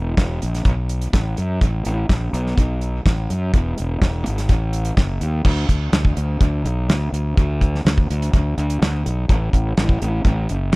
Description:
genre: psychedelic rock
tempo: 125 BPM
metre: 4/4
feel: straight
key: unclear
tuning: A4 = 440 Hz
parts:
  - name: fuzz fingered electric bass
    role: bass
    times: 0.0-10.8 s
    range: E1 to F#2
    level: -20 LUFS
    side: equal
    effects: overdrive
  - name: damped 70s drum kit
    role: drums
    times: 0.2-10.8 s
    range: crash cymbal, hi-hat, kick drum, snare drum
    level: -18 LUFS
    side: equal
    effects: dub echo
room: little or no reverb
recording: echo-heavy mix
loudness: -17 LUFS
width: side -25 dB against mid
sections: 0.0-5.5 A section; 5.5-10.8 B section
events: none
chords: none

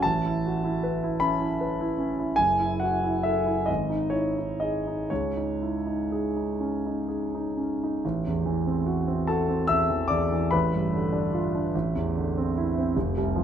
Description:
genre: classical, impressionist solo piano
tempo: 39-52 BPM (dotted quarters)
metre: 6/8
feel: rubato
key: C# minor, A minor from 8.0 s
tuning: A4 = 440 Hz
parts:
  - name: clear concert grand piano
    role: solo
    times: 0.0-13.4 s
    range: F1 to E6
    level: -24 LUFS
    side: equal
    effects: none
room: moderate recital hall reverb, RT60 1.5 s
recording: close, detailed microphones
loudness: -24 LUFS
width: side -9 dB against mid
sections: 0.0-8.0 A section; 8.0-13.4 B section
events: none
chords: 0.0 Aadd9; 2.4 F#m7; 3.7 G#5; 5.1 C#madd9; 8.0 Am6; 10.5 G9/A; 11.7 C69/A

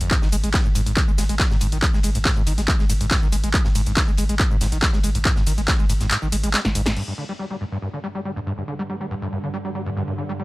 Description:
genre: driving peak-time techno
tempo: 140 BPM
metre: 4/4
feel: straight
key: unclear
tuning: A4 = 439 Hz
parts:
  - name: overdriven acid bass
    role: riff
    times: 0.0-10.4 s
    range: F2 to Ab3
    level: -27 LUFS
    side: equal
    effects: distortion, wide subtle chorus, sidechain pumping, tape echo
  - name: saturated sub bass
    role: bass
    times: 0.0-7.0 s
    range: G1 to Ab1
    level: -24 LUFS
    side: equal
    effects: overdrive, sidechain pumping, low-pass filter
  - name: techno drum kit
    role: drums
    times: 0.0-7.1 s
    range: crash cymbal, handclaps, hi-hat, ride cymbal, shaker, snare drum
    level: -24 LUFS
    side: equal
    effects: overdrive, sidechain pumping on hats, studio ambience, sidechain pumping on cymbals, sidechain pumping on perc
  - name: deep reggae drum kit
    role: drums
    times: 0.1-7.0 s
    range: ride cymbal, snare drum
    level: -35 LUFS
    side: equal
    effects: high-pass filter on cymbals, studio ambience, high-pass filter on snare, high-pass filter on room
  - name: electronic kick drum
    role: drums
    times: 0.1-5.8 s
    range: none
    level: -19 LUFS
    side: equal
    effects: overdrive, studio ambience
  - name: swarming drone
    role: drone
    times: 7.9-10.4 s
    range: G2 to D3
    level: -32 LUFS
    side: right 1 dB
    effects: built-in reverb, sidechain pumping
room: little or no reverb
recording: dry, gritty hardware recording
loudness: -19 LUFS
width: side -20 dB against mid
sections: 0.0-7.0 A section; 7.0-10.4 B section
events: drop 0.0-7.0; kick drops out 6.1-7.0; drum fill 6.6-7.0; band accent 6.9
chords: 0.1 Ab5; 7.0 G5

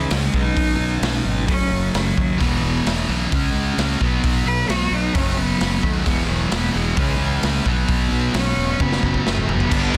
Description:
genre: quiet-loud alternative rock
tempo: 131 BPM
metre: 4/4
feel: straight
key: unclear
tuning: A4 = 436 Hz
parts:
  - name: clear cello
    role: melody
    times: 0.0-9.9 s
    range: E3 to B4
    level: -28 LUFS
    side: equal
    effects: tape echo
  - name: mellow electric guitar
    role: arpeggios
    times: 0.0-2.4 s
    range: F#2 to D#4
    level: -32 LUFS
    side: equal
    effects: ensemble chorus, tape echo
  - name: thick fuzz guitar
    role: riff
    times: 0.0-10.0 s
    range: E2 to D4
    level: -26 LUFS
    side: equal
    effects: distortion
  - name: fuzz fingered electric bass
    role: bass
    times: 0.0-10.0 s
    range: E1 to D#2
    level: -26 LUFS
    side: equal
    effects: overdrive
  - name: raw garage drum kit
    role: drums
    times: 0.1-10.0 s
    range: crash cymbal, hi-hat, kick drum, snare drum, toms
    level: -25 LUFS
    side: equal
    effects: none
  - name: scooped high-gain guitar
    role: riff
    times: 2.4-10.0 s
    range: E2 to D4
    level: -29 LUFS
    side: equal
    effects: distortion
  - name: distorted electric guitar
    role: riff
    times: 9.7-10.0 s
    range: G2 to D4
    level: -29 LUFS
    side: equal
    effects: overdrive
room: light reverb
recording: dense, heavily limited modern master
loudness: -20 LUFS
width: mono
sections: 0.0-9.7 A section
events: cello solo 0.0-9.7; drum fill 8.8-9.7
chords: 0.3 Badd9; 1.5 F#m; 2.4 E5; 3.3 C#5; 4.0 B5; 5.1 F#5; 6.1 E5; 7.0 C#m; 7.7 Bsus2; 8.8 F#5

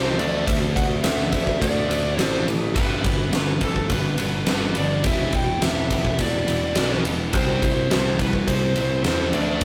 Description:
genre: hard rock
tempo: 105 BPM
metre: 4/4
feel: straight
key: unclear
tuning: A4 = 440 Hz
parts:
  - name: smooth overdriven lead guitar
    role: melody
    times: 0.0-9.6 s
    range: A4 to G5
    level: -30 LUFS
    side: equal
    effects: none
  - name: high-gain distorted guitar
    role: riff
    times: 0.0-9.6 s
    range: E2 to D4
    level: -32 LUFS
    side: equal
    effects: distortion
  - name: scooped high-gain guitar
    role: riff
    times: 0.0-9.6 s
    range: G2 to E4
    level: -35 LUFS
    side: equal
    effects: none
  - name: sludgy distorted guitar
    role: riff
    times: 0.0-9.6 s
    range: E2 to D4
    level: -34 LUFS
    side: equal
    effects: none
  - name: modern bright picked electric bass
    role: bass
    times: 0.0-9.6 s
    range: E1 to E2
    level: -28 LUFS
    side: equal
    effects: none
  - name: huge arena drum kit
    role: drums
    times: 0.2-9.6 s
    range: kick drum, ride cymbal, snare drum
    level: -25 LUFS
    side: equal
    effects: none
room: light reverb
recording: rough rehearsal-room recording, tube saturation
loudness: -22 LUFS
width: mono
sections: 0.0-9.6 A section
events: none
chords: 0.2 D; 2.8 G; 5.1 Em; 7.3 C

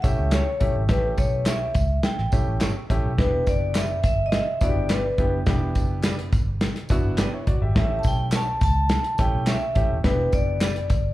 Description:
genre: uptempo 1960s-style soul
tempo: 105 BPM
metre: 4/4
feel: straight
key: E dorian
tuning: A4 = 441 Hz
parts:
  - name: vibraphone with medium hard mallets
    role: melody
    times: 0.0-11.1 s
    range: B4 to A5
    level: -26 LUFS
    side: equal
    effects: slapback echo
  - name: clear grand piano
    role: accompaniment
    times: 0.0-10.9 s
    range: A3 to E5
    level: -31 LUFS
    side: equal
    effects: slapback echo
  - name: vintage muted fingered electric bass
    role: bass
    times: 0.0-11.1 s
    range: D#1 to C#2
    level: -25 LUFS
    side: equal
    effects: none
  - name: natural country drum kit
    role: drums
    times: 0.0-11.0 s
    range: hi-hat, kick drum, snare drum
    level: -23 LUFS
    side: equal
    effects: none
  - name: tambourine and handclaps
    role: percussion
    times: 0.0-11.0 s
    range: none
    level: -38 LUFS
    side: equal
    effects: none
  - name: electric guitar through a small old amp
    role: stabs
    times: 0.3-10.7 s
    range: E4 to D5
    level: -36 LUFS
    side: right 4 dB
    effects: slapback echo
room: little or no reverb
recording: live gig heard through the venue's PA, club reverb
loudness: -20 LUFS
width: side -16 dB against mid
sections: 0.0-11.1 A section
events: none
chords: 0.0 A7; 3.2 Em7; 7.8 A7; 10.0 Em7

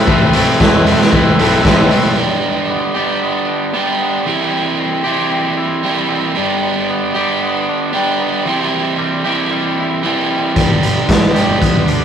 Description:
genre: indie rock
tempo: 114 BPM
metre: 4/4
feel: straight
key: unclear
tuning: A4 = 440 Hz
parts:
  - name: tonewheel organ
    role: sustained chords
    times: 0.0-2.1 s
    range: A4 to B5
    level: -22 LUFS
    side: left 1 dB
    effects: none
  - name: crunchy overdriven guitar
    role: riff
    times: 0.0-12.0 s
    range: E3 to G4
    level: -16 LUFS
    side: right 3 dB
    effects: none
  - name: twangy electric guitar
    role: riff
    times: 0.0-12.0 s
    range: G2 to B4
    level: -20 LUFS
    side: left 3 dB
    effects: none
  - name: fuzz fingered electric bass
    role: bass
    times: 0.0-2.1, 10.6-12.0 s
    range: G1 to G2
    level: -22 LUFS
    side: left 1 dB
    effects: none
  - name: raw garage drum kit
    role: drums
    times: 0.1-2.0, 10.6-12.0 s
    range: hi-hat, kick drum, snare drum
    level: -13 LUFS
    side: equal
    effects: none
room: moderate stone room reverb, RT60 1.1 s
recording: rough rehearsal-room recording, warm saturation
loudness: -12 LUFS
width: side -8 dB against mid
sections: 0.0-2.2 A section; 2.2-12.0 B section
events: none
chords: 0.0 Amadd9; 2.2 G; 4.3 C; 6.4 G; 8.5 C; 10.6 G

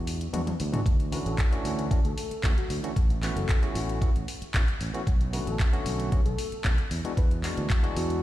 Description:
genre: nu-disco, nu disco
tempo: 114 BPM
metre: 4/4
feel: straight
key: A major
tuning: A4 = 441 Hz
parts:
  - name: overdriven fingered electric bass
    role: bass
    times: 0.0-8.2 s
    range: F#1 to E2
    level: -31 LUFS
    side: right 1 dB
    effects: tube saturation, sidechain pumping
  - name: house drum kit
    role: drums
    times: 0.1-8.2 s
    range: handclaps, hi-hat, toms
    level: -35 LUFS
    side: left 1 dB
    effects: none
  - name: barky tine electric piano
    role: accompaniment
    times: 0.3-8.2 s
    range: D3 to F#4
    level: -34 LUFS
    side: equal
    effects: slow stereo tremolo, sidechain pumping, tape echo
  - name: electronic kick drum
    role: drums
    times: 0.9-7.8 s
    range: none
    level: -24 LUFS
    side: equal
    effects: none
  - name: soft octave-layered synth lead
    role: melody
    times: 1.1-8.2 s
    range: F#4 to B4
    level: -39 LUFS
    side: left 4 dB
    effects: chorus, tape echo
room: digital ambience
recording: played on a big sound system in a bare room, stone room reverb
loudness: -24 LUFS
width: side -14 dB against mid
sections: 0.0-8.2 A section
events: kick drops out 0.3-0.9; drum fill 0.3-0.9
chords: 0.0 E7; 0.9 Dmaj9; 3.0 A6; 5.1 Bm9; 6.9 E7

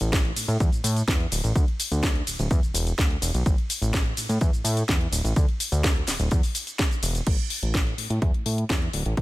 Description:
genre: filtered disco house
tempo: 126 BPM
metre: 4/4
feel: straight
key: unclear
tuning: A4 = 443 Hz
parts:
  - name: fat analog bass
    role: bass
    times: 0.0-9.2 s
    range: D1 to A2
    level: -25 LUFS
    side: equal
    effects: sidechain pumping, low-pass filter
  - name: house drum kit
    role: drums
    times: 0.0-9.2 s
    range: crash cymbal, hi-hat, ride cymbal, shaker, snare drum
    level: -28 LUFS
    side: equal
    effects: overdrive, sidechain pumping on hats, studio reverb, sidechain pumping on perc, sidechain pumping on cymbals
  - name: electronic kick drum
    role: drums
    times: 0.1-9.2 s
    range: none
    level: -23 LUFS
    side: equal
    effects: overdrive, studio reverb
room: little or no reverb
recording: none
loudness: -22 LUFS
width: side -18 dB against mid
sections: 0.0-7.3 A section; 7.3-9.2 B section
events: drop 0.0-7.3; filter sweep on analog synth bass 7.3-9.2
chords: none

